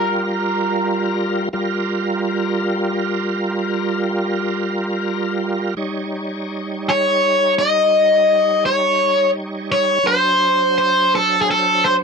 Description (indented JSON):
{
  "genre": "blues",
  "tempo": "56 BPM (dotted quarters)",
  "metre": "12/8",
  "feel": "straight",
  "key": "G minor",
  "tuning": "A4 = 440 Hz",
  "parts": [
    { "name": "overdriven electric guitar", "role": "melody", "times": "0.0-11.9 s", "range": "Ab4 to Eb5", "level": "-14 LUFS", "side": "left 1 dB", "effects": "none" },
    { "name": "bright tonewheel organ", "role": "sustained chords", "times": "0.0-12.0 s", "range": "F#3 to Db5", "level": "-21 LUFS", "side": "right 1 dB", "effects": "slow rotary speaker, overdrive, chorus vibrato" }
  ],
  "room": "light reverb",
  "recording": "dry, close 1970s-style studio recording",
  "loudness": "-16 LUFS",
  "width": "side -5 dB against mid",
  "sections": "0.0-12.0 A section",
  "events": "none",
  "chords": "0.0 Gm7; 5.8 Eb7; 10.0 D7",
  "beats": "0.47 | 1.53 2.60 3.66 4.72 | 5.78 6.85 7.91 8.97 | 10.04 11.10"
}